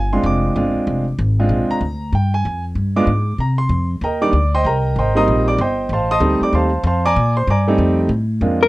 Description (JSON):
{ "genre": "jazz, small-group swing and bop", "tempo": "191 BPM", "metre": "4/4", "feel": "swing 64% on 8ths", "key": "Bb mixolydian", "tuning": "A4 = 440 Hz", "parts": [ { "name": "warm grand piano", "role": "accompaniment", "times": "0.0-8.6 s", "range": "G3 to Eb6", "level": "-18 LUFS", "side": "right 1 dB", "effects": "none" }, { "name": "upright bass", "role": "bass", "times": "0.0-8.7 s", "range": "F1 to C3", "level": "-18 LUFS", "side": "equal", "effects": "none" }, { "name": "hollow-body jazz guitar", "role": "melody", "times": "8.6-8.7 s", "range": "Bb4", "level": "-10 LUFS", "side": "left 4 dB", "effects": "none" } ], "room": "little or no reverb", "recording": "dry, close 1970s-style studio recording", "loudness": "-15 LUFS", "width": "side -18 dB against mid", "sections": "0.0-8.4 A section", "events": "none", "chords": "0.0 Bb7; 2.1 G7(no3); 3.4 Cm7; 5.9 F7; 7.2 Bb7; 7.8 F7", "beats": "0.24 0.55 | 0.87 1.18 1.50 1.81 | 2.13 2.44 2.75 3.07 | 3.38 3.70 4.01 4.33 | 4.64 4.96 5.27 5.58 | 5.90 6.21 6.53 6.84 | 7.16 7.47 7.79 8.10 | 8.41" }